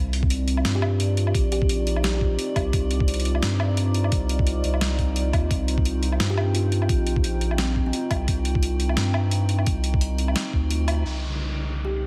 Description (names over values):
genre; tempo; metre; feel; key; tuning
half-time drum and bass; 173 BPM; 4/4; swing 56% on 16ths, half-time; C minor; A4 = 440 Hz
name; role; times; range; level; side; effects
dark analog pad; sustained chords; 0.0-12.1 s; C4 to G5; -34 LUFS; equal; chorus, phaser, sidechain pumping
saturated sub bass; bass; 0.0-12.1 s; Bb1 to G2; -26 LUFS; equal; none
metallic inharmonic drone; texture; 0.5-12.1 s; Eb4 to G4; -38 LUFS; equal; chorus, built-in reverb
boom bap sampler-style drum kit; drums; 0.1-11.0 s; hi-hat, snare drum, woodblock; -32 LUFS; equal; low-pass filter on hats, low-pass filter on perc, low-pass filter on snare
electronic kick drum; drums; 0.2-10.6 s; none; -26 LUFS; equal; none
kalimba; melody; 0.8-2.2, 6.3-8.0, 11.8-12.1 s; C4 to G4; -35 LUFS; equal; tape echo
downlifter; sound effects; 11.1-12.1 s; none; -35 LUFS; equal; none
room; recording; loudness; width
light reverb; none; -23 LUFS; mono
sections
0.0-11.1 A section; 11.1-12.1 B section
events
drop 0.0-11.1; kick drops out 10.7-11.1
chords
0.0 C5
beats
0.30 0.65 1.00 | 1.34 1.69 2.04 2.38 | 2.73 3.08 3.42 3.77 | 4.12 4.46 4.81 5.16 | 5.51 5.85 6.20 6.55 | 6.89 7.24 7.59 7.93 | 8.28 8.63 8.97 9.32 | 9.67 10.01 10.36 10.71 | 11.05 11.40 11.75